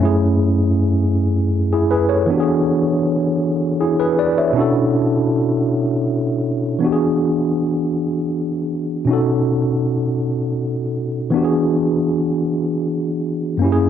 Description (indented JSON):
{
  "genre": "R&B",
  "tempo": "53 BPM (dotted quarters)",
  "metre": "6/8",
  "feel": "straight",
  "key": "unclear",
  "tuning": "A4 = 440 Hz",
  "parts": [
    { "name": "bright tine electric piano", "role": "solo", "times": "0.0-13.9 s", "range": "F#2 to E5", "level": "-16 LUFS", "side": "equal", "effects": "medium stereo tremolo, cassette tape" }
  ],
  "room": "light reverb",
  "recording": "home recording on cassette",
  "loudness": "-16 LUFS",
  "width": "side -9 dB against mid",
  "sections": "0.0-6.8 A section; 6.8-13.9 B section",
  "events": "none",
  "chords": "0.0 F#m9; 2.3 E9; 4.5 Bm11; 6.8 E9; 9.1 B9; 11.3 E9"
}